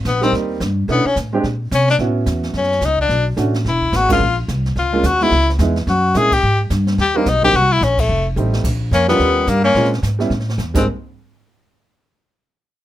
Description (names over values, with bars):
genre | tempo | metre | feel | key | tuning
jazz, small-group swing and bop | 217 BPM | 4/4 | swing 60% on 8ths | unclear | A4 = 441 Hz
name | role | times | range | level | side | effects
upright bass | bass | 0.0-10.8 s | E1 to C3 | -18 LUFS | equal | none
jazz brush drum kit | drums | 0.0-10.8 s | brushed snare drum, crash cymbal, hi-hat, kick drum, ride cymbal, snare drum | -26 LUFS | right 1 dB | none
bright tenor saxophone | melody | 0.1-10.9 s | A3 to Ab4 | -16 LUFS | left 3 dB | none
warm upright piano | accompaniment | 0.2-10.8 s | Gb3 to Bb4 | -20 LUFS | right 4 dB | none
warm alto saxophone | second line | 8.9-10.8 s | G3 to Bb3 | -22 LUFS | right 2 dB | none
room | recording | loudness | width
light reverb | close, detailed microphones | -14 LUFS | side -13 dB against mid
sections
0.0-8.6 A section; 8.6-10.9 B section; 10.9-12.0 C section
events
band accent 4.1, 6.3, 7.9; drum fill 8.4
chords
0.0 Abmaj9 (rootless); 0.9 Bm11; 1.4 Bbsus2; 2.0 A6; 3.1 Bm7; 3.6 E; 4.2 Gbmaj7 (rootless); 5.3 Dbm7; 5.9 Gb9; 6.4 Abmaj9; 7.5 Bbmadd9; 8.1 F7; 8.6 Bbm; 9.2 Eb7; 9.7 Bbm7; 10.3 A5; 10.7 Abmaj9; 10.9 N.C.